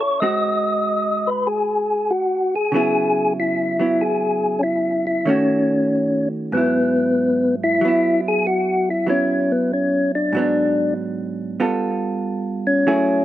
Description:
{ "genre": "jazz", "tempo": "95 BPM", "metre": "4/4", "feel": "swing 68% on 8ths", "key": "unclear", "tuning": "A4 = 445 Hz", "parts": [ { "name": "percussive tonewheel organ", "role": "melody", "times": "0.0-13.2 s", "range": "B3 to D#5", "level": "-18 LUFS", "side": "left 1 dB", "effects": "slow rotary speaker" }, { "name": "vintage hollow-body jazz guitar", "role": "accompaniment", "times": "0.0-13.2 s", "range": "G#2 to A4", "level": "-23 LUFS", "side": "right 3 dB", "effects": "none" } ], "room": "light reverb", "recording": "recorded outdoors, with no room sound", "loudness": "-17 LUFS", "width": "side -13 dB against mid", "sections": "0.0-7.8 A section; 7.8-13.2 B section", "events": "none", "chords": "0.2 G#7; 2.7 C#m7; 5.3 D#m7b5; 6.5 Eadd9/G#; 7.8 F#7sus4; 10.3 G#m7b5; 11.6 G9" }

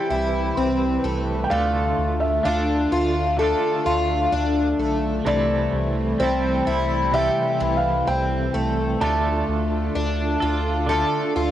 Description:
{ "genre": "dream pop", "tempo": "64 BPM", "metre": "4/4", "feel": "straight", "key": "unclear", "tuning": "A4 = 440 Hz", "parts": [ { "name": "felt-muted upright piano", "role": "melody", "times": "0.0-11.5 s", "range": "C5 to A5", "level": "-26 LUFS", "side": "equal", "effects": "cassette tape, analog delay" }, { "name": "twangy electric guitar", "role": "accompaniment", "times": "0.0-11.5 s", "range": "C3 to A4", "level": "-28 LUFS", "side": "right 4 dB", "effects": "tremolo, lush chorus, cassette tape" }, { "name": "string machine, violas", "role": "sustained chords", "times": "0.0-11.5 s", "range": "C3 to B4", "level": "-28 LUFS", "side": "right 1 dB", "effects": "ensemble chorus, cassette tape" }, { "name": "picked plugged-in twelve-string acoustic guitar", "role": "arpeggios", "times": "0.0-11.5 s", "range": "E3 to A4", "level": "-23 LUFS", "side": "left 2 dB", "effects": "analog chorus, cassette tape, analog delay" }, { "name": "round analog bass", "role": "bass", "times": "0.1-11.5 s", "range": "B1 to D2", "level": "-27 LUFS", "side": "right 1 dB", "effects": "none" } ], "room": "moderate lush hall reverb, RT60 2.3 s", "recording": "home recording on cassette", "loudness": "-19 LUFS", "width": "side -12 dB against mid", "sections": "0.0-11.5 A section", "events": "none", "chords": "0.0 C6; 1.5 Dm; 5.3 C6; 9.0 Dm" }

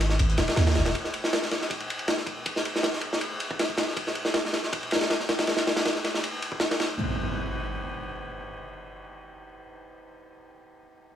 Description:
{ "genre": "drum and bass, jungle", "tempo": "159 BPM", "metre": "4/4", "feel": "swing 54% on 16ths", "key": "unclear", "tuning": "A4 = 443 Hz", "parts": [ { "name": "long sustained 808-style bass", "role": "bass", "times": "0.0-0.9 s", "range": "D#1 to D#2", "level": "-22 LUFS", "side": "equal", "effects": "none" }, { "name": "crunchy breakbeat drum kit", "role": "drums", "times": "0.0-6.9 s", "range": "kick drum, ride cymbal, snare drum", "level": "-26 LUFS", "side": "equal", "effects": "high-pass filter on kick, high-pass filter on cymbals, high-pass filter on snare, high-pass filter on room" }, { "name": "dusty soul sampler-style drum kit", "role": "drums", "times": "0.0-0.9 s", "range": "hi-hat, snare drum", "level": "-38 LUFS", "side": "left 2 dB", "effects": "none" }, { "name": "impact", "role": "sound effects", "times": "7.0-10.3 s", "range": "none", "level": "-34 LUFS", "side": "right 1 dB", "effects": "none" } ], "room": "little or no reverb", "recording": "studio ambience", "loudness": "-25 LUFS", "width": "side -10 dB against mid", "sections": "0.0-7.0 A section; 7.0-10.0 B section", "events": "none", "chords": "none" }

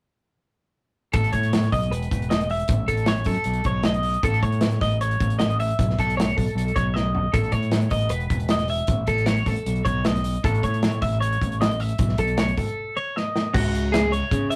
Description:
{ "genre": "math rock and midwest emo", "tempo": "155 BPM", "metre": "4/4", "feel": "straight", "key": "A lydian", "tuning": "A4 = 440 Hz", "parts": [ { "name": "twelve-string electric guitar", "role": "arpeggios", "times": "1.1-14.6 s", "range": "F#4 to E5", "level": "-28 LUFS", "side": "equal", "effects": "none" }, { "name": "growling fingered electric bass", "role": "bass", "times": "1.1-14.6 s", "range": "E1 to C#3", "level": "-27 LUFS", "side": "equal", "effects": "overdrive" }, { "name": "modern studio drum kit", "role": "drums", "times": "1.1-14.6 s", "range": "crash cymbal, hi-hat, kick drum, snare drum, toms", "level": "-27 LUFS", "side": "equal", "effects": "none" } ], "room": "moderate small room reverb, RT60 0.5 s", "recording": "rough rehearsal-room recording, warm saturation", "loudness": "-23 LUFS", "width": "mono", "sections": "1.1-13.5 A section; 13.5-14.6 B section", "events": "drum fill 7.0-7.3, 13.2-13.5; break 12.8-13.5", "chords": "1.1 A; 1.9 E5; 2.7 A; 3.5 B9; 4.2 A; 5.8 B9; 7.3 A; 8.1 E5; 8.9 A; 9.7 B9; 10.4 A; 12.0 Bsus2; 12.8 A; 13.5 C#5" }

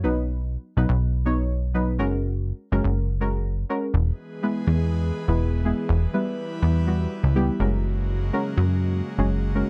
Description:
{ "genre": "pop", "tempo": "123 BPM", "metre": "4/4", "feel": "straight", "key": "unclear", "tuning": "A4 = 440 Hz", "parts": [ { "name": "deep mellow chord stab", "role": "accompaniment", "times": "0.0-9.7 s", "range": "F#3 to C#5", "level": "-29 LUFS", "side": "equal", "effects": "chorus" }, { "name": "plucky analog bass", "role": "bass", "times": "0.0-9.6 s", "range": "E1 to F#2", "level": "-24 LUFS", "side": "equal", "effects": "none" }, { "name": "airy breathy pad", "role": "sustained chords", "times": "3.9-9.7 s", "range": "C#3 to B4", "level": "-34 LUFS", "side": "equal", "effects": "chorus" } ], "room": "little or no reverb", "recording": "dry, close 1970s-style studio recording", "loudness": "-24 LUFS", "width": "mono", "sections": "0.0-3.9 A section; 3.9-9.7 B section", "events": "none", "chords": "0.0 B; 2.0 F#add9; 3.9 E; 5.9 Em; 7.6 F#add9" }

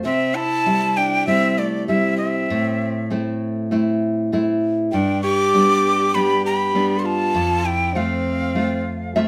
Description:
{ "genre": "andean folk, Andean ensemble", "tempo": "99 BPM", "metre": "4/4", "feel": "straight", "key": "A minor", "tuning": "A4 = 440 Hz", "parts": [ { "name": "breathy bright quena", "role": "melody", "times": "0.0-9.2 s", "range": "D5 to D6", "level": "-23 LUFS", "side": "equal", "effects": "none" }, { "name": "nylon-string guitar", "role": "accompaniment", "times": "0.0-9.3 s", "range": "F2 to E5", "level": "-23 LUFS", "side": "equal", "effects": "none" }, { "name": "bright alto saxophone", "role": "second line", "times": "0.1-9.1 s", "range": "A3 to A4", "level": "-25 LUFS", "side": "equal", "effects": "none" } ], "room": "wet studio reverb, RT60 0.6 s", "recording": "band playing live in one room", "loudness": "-20 LUFS", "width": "mono", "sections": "0.0-9.3 A section", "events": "nylon-string guitar fill 8.8-9.3", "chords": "0.1 C; 2.5 Am; 4.9 G; 7.3 F" }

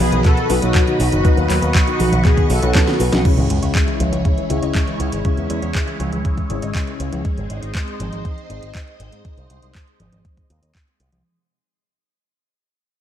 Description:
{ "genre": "italo disco", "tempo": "120 BPM", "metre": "4/4", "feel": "straight", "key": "C# minor", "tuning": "A4 = 437 Hz", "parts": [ { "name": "mellow synth brass", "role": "melody", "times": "0.0-3.1 s", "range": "B3 to A4", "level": "-23 LUFS", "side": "left 1 dB", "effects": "chorus, ping-pong delay, shimmer reverb" }, { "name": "phased string machine", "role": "sustained chords", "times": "0.0-11.2 s", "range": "G#3 to C#6", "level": "-26 LUFS", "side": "equal", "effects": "ensemble chorus, phaser, shimmer reverb" }, { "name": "analog pluck", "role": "arpeggios", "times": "0.0-7.2 s", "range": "B2 to C#5", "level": "-27 LUFS", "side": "right 4 dB", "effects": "chorus, tape echo, shimmer reverb" }, { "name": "dark concert grand piano", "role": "stabs", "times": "0.0-7.2 s", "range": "B2 to D#5", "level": "-25 LUFS", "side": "left 5 dB", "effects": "shimmer reverb" }, { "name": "picked electric bass with an envelope filter", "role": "bass", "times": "0.0-11.2 s", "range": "F#1 to G#2", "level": "-22 LUFS", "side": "equal", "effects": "tube saturation" }, { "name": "house drum kit", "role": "drums", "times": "0.0-11.2 s", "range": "cabasa, congas, crash cymbal, handclaps, hi-hat, snare drum", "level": "-24 LUFS", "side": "equal", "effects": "overdrive" }, { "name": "electronic kick drum", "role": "drums", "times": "0.2-10.8 s", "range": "none", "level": "-17 LUFS", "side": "equal", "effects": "none" }, { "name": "sub drop", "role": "sound effects", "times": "3.3-5.2 s", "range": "none", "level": "-26 LUFS", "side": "right 1 dB", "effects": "none" } ], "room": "light reverb", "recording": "dark, warm production", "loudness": "-15 LUFS", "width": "side -10 dB against mid", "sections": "0.0-3.2 A section; 3.2-11.2 B section", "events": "drum fill 2.7-3.2; fade-out 3.2-11.2; impact 3.2-5.2", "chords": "0.0 B; 3.2 C#m; 7.2 G#" }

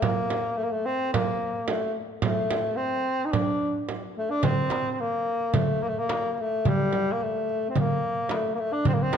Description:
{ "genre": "Turkish makam ensemble", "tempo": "109 BPM", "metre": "4/4", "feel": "straight", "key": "unclear", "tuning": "A4 = 440 Hz", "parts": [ { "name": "mellow tenor saxophone", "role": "melody", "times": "0.0-9.2 s", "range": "G3 to Eb4", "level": "-26 LUFS", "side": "left 1 dB", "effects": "none" }, { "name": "frame drum", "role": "percussion", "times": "0.0-9.2 s", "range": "none", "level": "-29 LUFS", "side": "right 6 dB", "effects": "none" }, { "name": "darbuka", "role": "percussion", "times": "4.4-9.2 s", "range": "none", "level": "-28 LUFS", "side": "left 2 dB", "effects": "none" } ], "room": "moderate concert hall reverb, RT60 1.8 s", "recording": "dark, warm production, nothing above 10.4 kHz", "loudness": "-24 LUFS", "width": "side -7 dB against mid", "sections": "0.0-9.2 A section", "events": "none", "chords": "none" }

